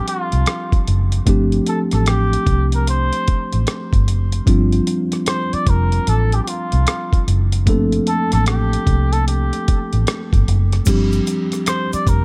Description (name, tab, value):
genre	R&B, neo-soul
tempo	75 BPM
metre	4/4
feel	swing 64% on 16ths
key	unclear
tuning	A4 = 439 Hz
part	trumpet with cup mute	melody	0.0-12.2 s	F4 to D5	-27 LUFS	equal	tape echo
part	mellow tine electric piano	accompaniment	0.0-12.2 s	F3 to A4	-24 LUFS	equal	none
part	dusty soul sampler-style drum kit	drums	0.1-12.2 s	crash cymbal, hi-hat, kick drum, rim click	-21 LUFS	equal	none
part	vintage muted fingered electric bass	bass	0.3-12.2 s	F1 to C2	-19 LUFS	equal	none
part	tube shaker and finger snaps	percussion	10.9-12.2 s	none	-35 LUFS	equal	none
room	small room ambience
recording	none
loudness	-17 LUFS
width	mono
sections	0.0-10.9 A section; 10.9-12.2 A section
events	none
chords	0.0 G9sus4; 10.9 G7sus4